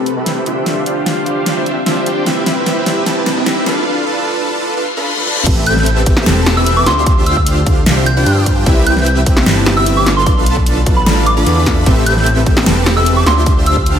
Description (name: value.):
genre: future bass.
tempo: 150 BPM.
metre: 4/4.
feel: half-time.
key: A minor.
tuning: A4 = 440 Hz.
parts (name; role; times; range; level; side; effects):
shimmering ambient pad; sustained chords; 0.0-3.8 s; C3 to B4; -25 LUFS; equal; chorus, built-in reverb, sidechain pumping.
dense compressed supersaw; riff; 0.0-14.0 s; C4 to B5; -16 LUFS; equal; sidechain pumping, low-pass filter, diffuse ambient delay.
fat analog bass; bass; 0.0-14.0 s; E1 to G2; -16 LUFS; equal; sidechain pumping, high-pass filter.
riser and reverse cymbal; sound effects; 2.4-5.5 s; none; -24 LUFS; left 4 dB; none.
big-room dance drum kit; drums; 0.1-13.9 s; crash cymbal, hi-hat, snare drum, toms; -17 LUFS; equal; none.
electronic kick drum; drums; 5.5-13.8 s; none; -14 LUFS; equal; none.
soft synth bell; melody; 5.7-13.8 s; B5 to G6; -18 LUFS; equal; chorus, sidechain pumping, ping-pong delay.
room: moderate plate reverb, RT60 1.3 s.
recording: dreamy mix soaked in reverb, high-pass filter.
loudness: -11 LUFS.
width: side -8 dB against mid.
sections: 0.0-5.5 A section; 5.5-14.0 B section.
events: build-up 0.0-5.5; drum fill 0.0-3.9, 5.2; filter sweep on supersaw synth 0.0-5.5; filter sweep 0.0-5.5; reverse cymbal 4.8-5.5; drop 5.5-14.0.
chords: 0.5 Dm11; 2.3 Cmaj7; 3.9 Bm7b5; 5.5 Am9; 6.9 Dm11; 8.7 Cmaj7; 10.3 Bm7b5; 11.9 Am9; 13.3 Dm11.